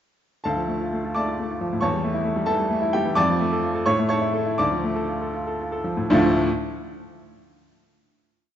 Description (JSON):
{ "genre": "classical, virtuoso piano study", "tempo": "77-93 BPM (dotted quarters)", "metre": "6/8", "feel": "rubato", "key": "D minor", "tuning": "A4 = 439 Hz", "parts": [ { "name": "bright baby grand piano", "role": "solo", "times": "0.4-6.5 s", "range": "D2 to D6", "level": "-21 LUFS", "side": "equal", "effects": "none" } ], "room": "moderate scoring stage reverb, RT60 2.0 s", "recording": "dark, warm production, nothing above 7.7 kHz", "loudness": "-21 LUFS", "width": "side -10 dB against mid", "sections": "0.5-6.1 A section; 6.1-7.6 final chord", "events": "slowing down 2.5-6.1", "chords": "0.5 Dm; 1.8 A7/E; 3.2 Dm/F; 3.9 A; 4.6 Dm" }